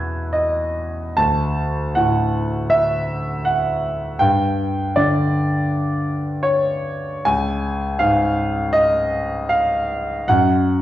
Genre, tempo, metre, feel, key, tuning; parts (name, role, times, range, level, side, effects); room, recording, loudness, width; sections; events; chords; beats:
classical, impressionist solo piano; 79 BPM; 4/4; uneven beats, rubato; A4 = 440 Hz
clear concert grand piano; solo; 0.0-10.8 s; C#2 to G#6; -17 LUFS; equal
wet recital hall reverb, RT60 1.3 s; worn, warbling old tape, cassette tape, warbly pitch drift; -17 LUFS; side -13 dB against mid
0.0-10.8 A section
0.0 Eadd9; 1.2 Dadd9; 4.2 G5; 7.3 C#add9; 10.3 F#5
0.35 | 1.19 1.97 2.72 3.46 | 4.21 4.98 5.72 6.45 | 7.26 8.00 8.74 9.50 | 10.28